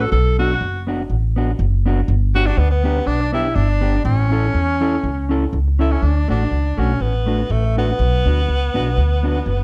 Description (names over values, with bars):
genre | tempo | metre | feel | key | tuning
ska | 122 BPM | 4/4 | swing 54% on 8ths | D major | A4 = 440 Hz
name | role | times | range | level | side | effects
breathy tenor saxophone | melody | 0.0-9.6 s | A3 to A4 | -24 LUFS | equal | slapback echo
mellow electric guitar | accompaniment | 0.0-9.5 s | A3 to A4 | -26 LUFS | equal | warbly pitch drift, slapback echo
upright bass | bass | 0.0-9.6 s | F#1 to E2 | -20 LUFS | equal | none
room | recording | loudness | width
light reverb | dark, warm production | -18 LUFS | mono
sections
0.0-6.0 A section; 6.0-9.6 B section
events
none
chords
0.1 Bm; 2.1 G; 4.0 A; 6.0 D; 8.0 Bm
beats
| 0.12 0.61 1.10 1.59 | 2.08 2.57 3.06 3.56 | 4.05 4.54 5.03 5.52 | 6.02 6.51 7.00 7.49 | 7.99 8.48 8.97 9.46